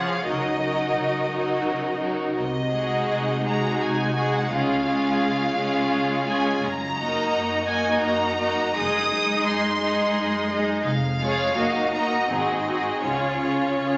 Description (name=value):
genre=classical, slow romantic movement for string orchestra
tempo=84 BPM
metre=3/4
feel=uneven beats, rubato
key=Db major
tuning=A4 = 440 Hz
part: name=clear chamber violin section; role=melody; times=0.0-14.0 s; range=Db5 to Eb6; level=-29 LUFS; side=equal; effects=none
part: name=warm chamber violin section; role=second line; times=0.0-14.0 s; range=F4 to Eb5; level=-29 LUFS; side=equal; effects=none
part: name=rich chamber viola section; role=accompaniment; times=0.0-14.0 s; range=F3 to F4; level=-28 LUFS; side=equal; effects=none
part: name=warm chamber cello section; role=bass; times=0.0-14.0 s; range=F2 to Db3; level=-36 LUFS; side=equal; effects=none
part: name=clear chamber double bass section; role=bass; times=0.2-13.7 s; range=F1 to Db2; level=-36 LUFS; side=equal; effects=none
room=wet scoring stage reverb, RT60 1.5 s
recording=nothing above 7.7 kHz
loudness=-24 LUFS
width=mono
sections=0.0-14.0 A section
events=none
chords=0.3 Ebm7/Db; 2.4 Ab7/C; 4.5 Db; 6.6 Ebm/Gb; 8.8 Ab7/Gb; 10.8 Db/F; 11.6 Ebm/Gb; 12.3 Ab7; 13.0 Db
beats=| 0.26 0.96 1.66 | 2.37 3.09 3.81 | 4.51 5.21 5.92 | 6.63 7.32 8.01 | 8.76 9.46 10.15 | 10.85 11.56 12.29 | 13.04 13.79